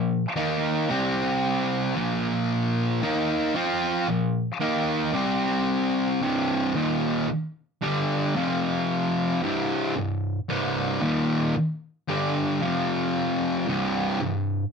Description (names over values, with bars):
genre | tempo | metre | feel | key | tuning
metal | 56 BPM | 4/4 | straight | C minor | A4 = 439 Hz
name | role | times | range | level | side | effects
fuzz guitar | solo | 0.0-14.6 s | C2 to F4 | -23 LUFS | equal | distortion
room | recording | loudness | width
moderate studio reverb, RT60 0.6 s | band playing live in one room | -23 LUFS | side -6 dB against mid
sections
0.0-6.2 A section; 6.2-14.7 B section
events
none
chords
0.0 Bb5; 0.9 C5; 2.0 Bb5; 5.1 C5; 6.2 Cm; 8.3 F5; 9.4 Cm; 12.6 F5; 13.7 C5